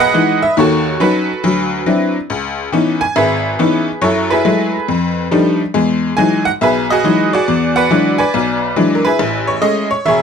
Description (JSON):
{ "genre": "solo jazz", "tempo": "139 BPM", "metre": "4/4", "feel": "swing 65% on 8ths", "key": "E major", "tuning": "A4 = 440 Hz", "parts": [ { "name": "tack piano", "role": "solo", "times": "0.0-10.2 s", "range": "E1 to G#5", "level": "-12 LUFS", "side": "equal", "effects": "none" } ], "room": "light reverb", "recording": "dark, warm production", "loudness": "-12 LUFS", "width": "side -7 dB against mid", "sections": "0.0-10.2 A section", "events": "none", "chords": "0.0 Emaj7; 0.6 D#m7b5; 1.4 D9; 2.3 C#m9; 4.0 F#m9; 4.9 F13; 5.7 Emaj9; 7.5 E9; 9.2 Amaj7", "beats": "0.13 | 0.56 0.99 1.42 1.85 | 2.29 2.72 3.15 3.58 | 4.01 4.44 4.88 5.31 | 5.74 6.17 6.60 7.03 | 7.46 7.89 8.32 8.76 | 9.19 9.62 10.05" }